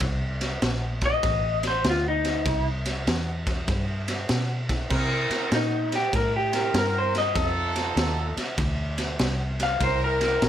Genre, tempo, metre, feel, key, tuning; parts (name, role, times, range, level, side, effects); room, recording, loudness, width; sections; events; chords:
electric blues shuffle; 98 BPM; 4/4; swing 65% on 8ths; A4 = 440 Hz
vintage muted fingered electric bass; bass; 0.0-10.5 s; A1 to C3; -28 LUFS; equal
raw garage drum kit; drums; 0.0-10.5 s; crash cymbal, kick drum, ride cymbal, snare drum; -27 LUFS; equal
electric guitar through a small old amp; melody; 1.1-10.5 s; Eb4 to F5; -24 LUFS; left 1 dB
clear horn section; stabs; 4.9-10.5 s; C4 to Bb4; -28 LUFS; right 3 dB
light reverb; -23 LUFS; side -10 dB against mid
0.0-4.9 A section; 4.9-10.5 B section
clean electric guitar solo 4.9-10.5
0.0 Bbsus2; 1.2 A(b5, no3); 2.5 C; 3.7 G; 4.9 C7; 7.4 F7; 9.8 C7